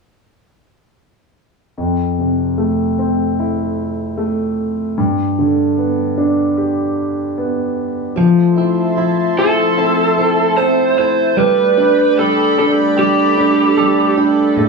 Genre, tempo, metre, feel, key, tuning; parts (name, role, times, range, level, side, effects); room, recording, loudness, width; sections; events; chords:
pop; 75 BPM; 4/4; straight; A4 = 439 Hz
clear concert grand piano; accompaniment; 1.8-14.7 s; F2 to G4; -16 LUFS; equal
chorused pulse-width pad; sustained chords; 8.2-14.7 s; A4 to C6; -20 LUFS; equal
direct-recorded clean electric guitar; arpeggios; 8.2-14.7 s; A2 to A4; -18 LUFS; right 1 dB
lead guitar through a small cranked amp; melody; 9.4-14.1 s; G4 to C5; -14 LUFS; right 2 dB; overdrive
moderate large studio reverb, RT60 1.1 s; band playing live in one room, studio ambience; -13 LUFS; side -4 dB against mid
1.8-8.2 A section; 8.2-14.7 B section
1.8 Fmaj7; 5.0 G; 8.2 Fmaj7; 11.4 Gadd9